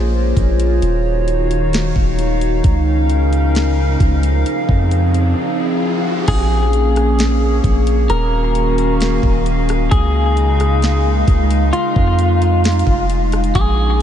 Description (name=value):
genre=hip hop, atmospheric cloud-rap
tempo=132 BPM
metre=4/4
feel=half-time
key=Bb minor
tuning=A4 = 441 Hz
part: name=warbly tape-like pad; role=sustained chords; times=0.0-14.0 s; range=Db3 to F5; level=-19 LUFS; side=equal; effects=chorus, built-in reverb, sidechain pumping
part: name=long sustained 808-style bass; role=bass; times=0.0-14.0 s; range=Eb1 to F2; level=-16 LUFS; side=equal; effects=none
part: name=drifting glass-harmonics texture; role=texture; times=0.0-14.0 s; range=F3 to Eb5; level=-30 LUFS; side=right 2 dB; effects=chorus, built-in reverb
part: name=trap drum kit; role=drums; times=0.4-13.7 s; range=crash cymbal, hi-hat, kick drum, rim click, snare drum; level=-20 LUFS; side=equal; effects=none
part: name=riser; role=sound effects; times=4.3-6.3 s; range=none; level=-29 LUFS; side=right 2 dB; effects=none
part: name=clean electric guitar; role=melody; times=6.3-14.0 s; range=F4 to Bb4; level=-20 LUFS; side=left 1 dB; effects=wide subtle chorus, ping-pong delay
room=light reverb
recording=nothing above 10.5 kHz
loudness=-13 LUFS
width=side -10 dB against mid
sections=0.0-6.3 A section; 6.3-14.0 B section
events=riser 4.3-6.3; break 5.4-6.3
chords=0.0 Bbm7; 0.8 Ebm7; 2.6 Db69; 4.5 Fm7; 6.3 Bbm7; 8.1 Ebm7; 9.9 Db69; 11.7 Fm7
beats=0.37 | 0.82 1.28 1.73 2.19 | 2.64 3.10 3.55 4.00 | 4.46 4.91 5.37 5.82 | 6.28 6.73 7.19 7.64 | 8.10 8.55 9.01 9.46 | 9.91 10.37 10.82 11.28 | 11.73 12.19 12.64 13.10 | 13.55 14.01